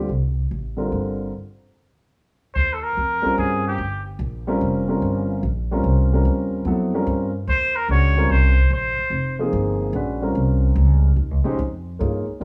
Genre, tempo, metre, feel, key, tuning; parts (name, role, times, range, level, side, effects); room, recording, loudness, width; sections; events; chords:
modal jazz; 146 BPM; 3/4; swing 67% on 8ths; Eb mixolydian; A4 = 440 Hz
warm grand piano; accompaniment; 0.0-12.4 s; D3 to Db5; -25 LUFS; equal
upright bass; bass; 0.0-12.4 s; F1 to G2; -23 LUFS; equal
trumpet with straight mute; melody; 2.5-4.0, 7.5-9.4 s; G4 to Db5; -24 LUFS; equal
light reverb; heard from further back in the room, studio reverb; -21 LUFS; mono
0.0-2.6 A section; 2.6-12.4 B section
stop 1.3-2.6
0.0 Fsus4; 2.6 Eb13